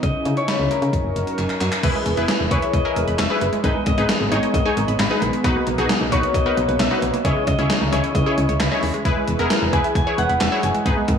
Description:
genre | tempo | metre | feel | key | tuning
synth-pop | 133 BPM | 4/4 | straight | unclear | A4 = 443 Hz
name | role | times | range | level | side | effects
concert harp | melody | 0.0-11.2 s | A#4 to G#5 | -25 LUFS | left 3 dB | tape echo, shimmer reverb
warm analog pad | sustained chords | 0.0-11.2 s | C#3 to B4 | -27 LUFS | equal | chorus, shimmer reverb
solid FM bass | bass | 0.0-11.2 s | E1 to C#3 | -23 LUFS | equal | none
gated 80s digital drum machine | drums | 0.0-11.2 s | crash cymbal, handclaps, hi-hat, kick drum, snare drum | -23 LUFS | equal | gated reverb, gated reverb snare, overdrive
wide unison pluck | accompaniment | 1.8-11.1 s | D#4 to C#5 | -23 LUFS | left 2 dB | shimmer reverb
analog pluck | arpeggios | 1.8-11.2 s | D#3 to E6 | -28 LUFS | right 6 dB | chorus, tape echo, shimmer reverb
room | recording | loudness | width
moderate scoring stage reverb, RT60 1.5 s | small room ambience | -17 LUFS | side -7 dB against mid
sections
0.0-1.8 A section; 1.8-11.2 B section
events
drum fill 1.4-1.8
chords
0.0 C#madd9; 0.9 F#6; 1.8 E; 3.6 G#m; 5.4 Bmaj7; 7.2 C#madd9; 9.1 E

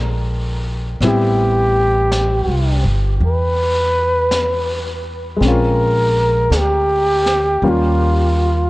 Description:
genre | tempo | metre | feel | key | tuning
jazz ballad | 54 BPM | 4/4 | swing 67% on 8ths | unclear | A4 = 443 Hz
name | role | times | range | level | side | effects
warm baby grand piano | accompaniment | 0.0-8.7 s | G3 to F4 | -22 LUFS | left 2 dB | none
upright bass | bass | 0.0-8.7 s | G1 to E2 | -18 LUFS | equal | none
jazz brush drum kit | drums | 1.0-8.7 s | brushed snare drum, hi-hat, snare drum | -28 LUFS | equal | vintage 12-bit sampler grit
breathy flugelhorn | melody | 1.1-8.7 s | F4 to B4 | -17 LUFS | equal | tape echo
room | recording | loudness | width
light reverb, small room ambience | none | -14 LUFS | side -20 dB against mid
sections
0.0-8.7 A section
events
none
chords
0.0 Bb9; 1.0 Am7; 5.4 Bbm7; 7.6 Eb9

